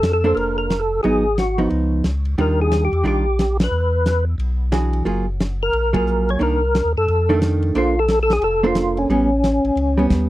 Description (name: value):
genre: soul jazz organ trio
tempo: 179 BPM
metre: 4/4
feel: swing 63% on 8ths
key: unclear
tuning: A4 = 440 Hz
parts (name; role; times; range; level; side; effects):
- percussive tonewheel organ; melody; 0.0-10.1 s; Db4 to Db5; -19 LUFS; equal; slow rotary speaker, chorus vibrato
- tonewheel organ; bass; 0.0-10.3 s; F1 to Gb2; -21 LUFS; equal; chorus vibrato, slow rotary speaker
- warm soul drum kit; drums; 0.0-10.2 s; crash cymbal, hi-hat, kick drum, ride cymbal, snare drum; -22 LUFS; equal; none
- hollow-body jazz guitar; accompaniment; 0.2-10.3 s; Eb3 to C5; -20 LUFS; right 2 dB; none
room: little or no reverb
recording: dry, close 1970s-style studio recording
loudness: -16 LUFS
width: side -16 dB against mid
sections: 0.0-10.3 A section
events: band accent 3.6, 5.9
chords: 0.0 Bbmaj9; 1.0 Abm7; 1.7 Db9; 2.4 Ebmaj9; 3.7 E9; 5.1 Gbmaj9; 6.4 Cm9; 7.1 F6; 7.8 Bbmaj9; 9.1 A9